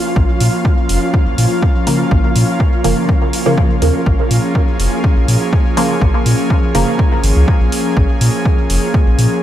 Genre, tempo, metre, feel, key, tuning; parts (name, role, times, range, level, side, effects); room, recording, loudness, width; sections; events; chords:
dub techno; 123 BPM; 4/4; straight; Bb minor; A4 = 440 Hz
airy breathy pad; sustained chords; 0.0-9.4 s; F3 to Ab4; -18 LUFS; equal; chorus, sidechain pumping
flickering grainy texture; texture; 0.0-9.4 s; F4; -26 LUFS; right 1 dB; built-in reverb, sidechain pumping
soft dub sub bass; bass; 0.2-9.3 s; F1 to Bb2; -14 LUFS; equal; tube saturation, sidechain pumping
electronic kick drum; drums; 0.2-9.0 s; -14 LUFS; equal; overdrive, studio reverb
electronic hi-hat; drums; 0.4-9.3 s; -24 LUFS; equal; overdrive, studio reverb
filtered dub chord stab; stabs; 1.9-6.9 s; Db3 to Bb3; -18 LUFS; equal; chorus, phaser, sidechain pumping, dub echo
light reverb; -11 LUFS; side -12 dB against mid
0.0-9.4 A section
0.0 Bbm